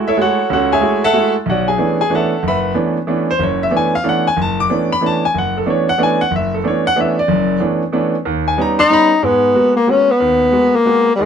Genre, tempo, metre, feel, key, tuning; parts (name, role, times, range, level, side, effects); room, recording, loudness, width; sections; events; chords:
jazz; 186 BPM; 3/4; swing 62% on 8ths; B dorian; A4 = 442 Hz
clear grand piano; accompaniment; 0.0-11.3 s; F#1 to D6; -14 LUFS; right 1 dB
breathy tenor saxophone; melody; 8.8-11.3 s; G3 to D#4; -11 LUFS; left 2 dB
light reverb; close, detailed microphones; -13 LUFS; side -7 dB against mid
0.0-1.5 A section; 1.5-9.2 A section; 9.2-11.3 B section
0.0 F#m9; 1.5 Bm11; 8.3 D#7b13; 9.2 G#m9